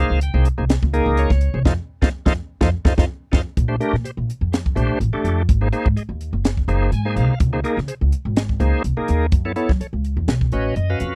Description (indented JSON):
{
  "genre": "electric jazz fusion",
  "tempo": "125 BPM",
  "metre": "4/4",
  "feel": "swing 54% on 16ths",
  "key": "unclear",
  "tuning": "A4 = 439 Hz",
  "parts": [
    { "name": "bright tonewheel organ", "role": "accompaniment", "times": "0.0-11.2 s", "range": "A3 to Ab5", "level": "-25 LUFS", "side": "equal", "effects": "slow rotary speaker" },
    { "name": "upright bass", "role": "bass", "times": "0.0-11.2 s", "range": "Gb1 to Gb3", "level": "-22 LUFS", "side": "equal", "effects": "none" },
    { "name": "crisp fusion drum kit", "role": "drums", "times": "0.2-11.1 s", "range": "hi-hat, kick drum, snare drum", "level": "-22 LUFS", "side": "equal", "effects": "none" }
  ],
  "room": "little or no reverb",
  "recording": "dry, close 1970s-style studio recording",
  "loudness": "-20 LUFS",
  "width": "mono",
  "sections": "0.0-3.6 A section; 3.6-11.2 B section",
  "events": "band accent 1.6-3.6; drum fill 3.3; tonewheel organ fill 6.7-7.4, 10.3-11.2",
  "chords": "0.0 Dbsus2; 1.6 F7; 3.6 Bbmaj9; 5.5 Ab9; 7.4 Db5; 9.3 Gbm7; 10.3 B9",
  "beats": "0.21 0.69 1.17 | 1.65 2.13 2.61 3.09 | 3.57 4.05 4.53 5.01 | 5.49 5.97 6.45 6.93 | 7.41 7.89 8.37 8.85 | 9.33 9.81 10.29 10.77"
}